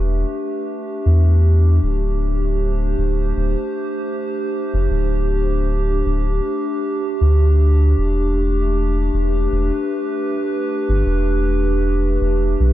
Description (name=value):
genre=ambient dub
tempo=78 BPM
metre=4/4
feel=swing 56% on 16ths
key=unclear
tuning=A4 = 440 Hz
part: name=warbly tape-like pad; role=sustained chords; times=0.0-12.7 s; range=A3 to C5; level=-21 LUFS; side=equal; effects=chorus, built-in reverb
part: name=soft dub sub bass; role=bass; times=0.0-12.7 s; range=D1 to E2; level=-16 LUFS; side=equal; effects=none
room=light reverb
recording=none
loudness=-16 LUFS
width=side -14 dB against mid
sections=0.0-12.7 A section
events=none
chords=0.0 Em7; 1.8 D7(no3); 8.0 Em7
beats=0.28 1.05 | 1.82 2.59 3.36 4.13 | 4.90 5.67 6.44 7.21 | 7.98 8.75 9.52 10.29 | 11.05 11.82 12.59